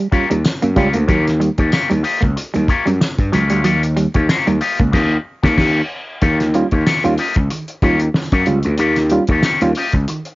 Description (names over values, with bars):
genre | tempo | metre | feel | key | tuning
funk | 94 BPM | 4/4 | swing 56% on 16ths | Eb mixolydian | A4 = 440 Hz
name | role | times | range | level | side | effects
semi-hollow electric guitar | riff | 0.0-4.9 s | Gb3 to Bb3 | -19 LUFS | right 3 dB | cassette tape
electric guitar with an envelope filter | accompaniment | 0.1-10.3 s | Bb3 to Eb5 | -20 LUFS | left 3 dB | cassette tape
barky reed electric piano | stabs | 0.1-0.9, 6.2-10.2 s | Eb3 to F4 | -20 LUFS | right 2 dB | overdrive, cassette tape
gritty slap bass | bass | 0.1-10.0 s | Db2 to G2 | -17 LUFS | equal | overdrive, tube saturation
cloth-damped thuddy drum kit | drums | 0.1-10.3 s | crash cymbal, hi-hat, kick drum, snare drum | -19 LUFS | equal | cassette tape
tambourine | percussion | 0.4-9.6 s | none | -30 LUFS | left 2 dB | none
room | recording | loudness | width
small room ambience | home recording on cassette, nothing above 7.5 kHz | -14 LUFS | side -20 dB against mid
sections
0.0-6.2 A section; 6.2-10.3 A section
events
band accent 4.9-6.2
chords
0.0 Eb9